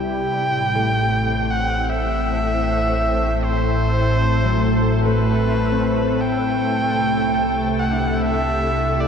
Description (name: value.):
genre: ambient.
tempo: 76 BPM.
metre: 4/4.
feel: straight.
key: A dorian.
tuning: A4 = 440 Hz.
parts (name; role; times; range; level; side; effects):
warm electric violin; melody; 0.0-9.1 s; B4 to G5; -22 LUFS; right 1 dB; ping-pong delay.
soft additive organ-like pad; sustained chords; 0.0-9.1 s; A2 to A4; -20 LUFS; left 1 dB; ensemble chorus, built-in reverb.
concert harp; arpeggios; 0.0-9.1 s; F#3 to D4; -28 LUFS; left 2 dB; ping-pong delay.
warm sub bass; bass; 0.0-9.1 s; A1 to C2; -26 LUFS; equal; tube saturation.
room: wet huge ambient reverb, RT60 7.8 s.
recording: dark, warm production.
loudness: -17 LUFS.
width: side -7 dB against mid.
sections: 0.3-9.1 A section.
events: none.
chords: 0.3 Am9; 6.6 C.